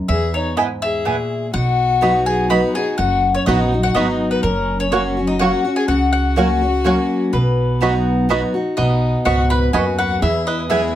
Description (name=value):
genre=bluegrass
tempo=124 BPM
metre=3/4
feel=straight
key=B major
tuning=A4 = 440 Hz
part: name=picked steel-string acoustic guitar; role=accompaniment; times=0.0-11.0 s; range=E2 to F#4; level=-20 LUFS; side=equal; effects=none
part: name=mandolin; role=melody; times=0.1-10.9 s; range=A#4 to B5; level=-21 LUFS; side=left 4 dB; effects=none
part: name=clear fiddle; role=second line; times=0.1-10.9 s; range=B3 to B4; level=-26 LUFS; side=left 3 dB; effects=none
part: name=upright bass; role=bass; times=0.1-11.0 s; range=F#1 to E2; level=-22 LUFS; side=right 1 dB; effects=none
part: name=mandolin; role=stabs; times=0.6-10.8 s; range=A#3 to B5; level=-21 LUFS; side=right 6 dB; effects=none
part: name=bluegrass banjo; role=melody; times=3.5-11.0 s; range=B3 to B4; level=-24 LUFS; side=right 4 dB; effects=slapback echo
room=moderate small room ambience, RT60 0.5 s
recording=none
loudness=-15 LUFS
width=side -12 dB against mid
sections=0.0-8.8 A section; 8.8-11.0 B section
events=none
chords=0.1 E; 1.5 B; 4.4 F#; 7.3 B; 10.2 E